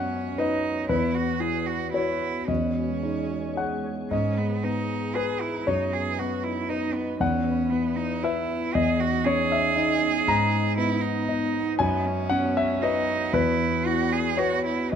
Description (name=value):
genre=neoclassical piano and strings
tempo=117 BPM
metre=3/4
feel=rubato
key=unclear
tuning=A4 = 442 Hz
part: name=rich cello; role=second line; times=0.0-15.0 s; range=B3 to G#4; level=-28 LUFS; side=right 7 dB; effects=none
part: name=dark concert grand piano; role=accompaniment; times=0.0-15.0 s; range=E2 to A#5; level=-25 LUFS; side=left 2 dB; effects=none
part: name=glassy FM pad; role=sustained chords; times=0.0-15.0 s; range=G#3 to A#5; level=-33 LUFS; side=left 1 dB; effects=ensemble chorus, built-in reverb
room=light reverb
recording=close, detailed microphones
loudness=-23 LUFS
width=side -8 dB against mid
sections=0.0-4.1 A section; 4.1-15.0 A section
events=none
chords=0.0 Badd9/F#; 0.9 Esus2; 2.5 C#madd9/E; 4.1 G#madd9; 5.7 Badd9/F#; 7.2 Esus2; 8.7 C#madd9/E; 10.3 G#madd9; 11.8 Badd9/F#; 13.3 Esus2